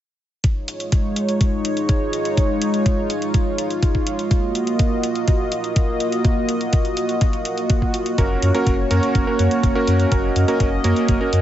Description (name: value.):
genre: italo disco.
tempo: 124 BPM.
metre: 4/4.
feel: straight.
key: unclear.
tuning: A4 = 439 Hz.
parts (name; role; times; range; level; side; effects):
warm analog pad; sustained chords; 0.4-11.4 s; Ab3 to Eb5; -21 LUFS; right 1 dB; chorus.
electronic hi-hat; drums; 0.4-11.4 s; none; -30 LUFS; left 1 dB; overdrive.
electronic kick drum; drums; 0.4-11.2 s; none; -19 LUFS; equal; overdrive.
clear electric grand piano; stabs; 8.2-11.4 s; Bb3 to Bb4; -22 LUFS; right 2 dB; tape echo.
round analog bass; bass; 8.2-11.4 s; Gb1 to Gb2; -20 LUFS; equal; tube saturation.
room: light reverb.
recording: nothing above 7.7 kHz.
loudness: -17 LUFS.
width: side -12 dB against mid.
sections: 0.4-11.4 A section.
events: none.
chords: 0.4 Dbadd9; 4.3 Ebmadd9; 8.2 Gb.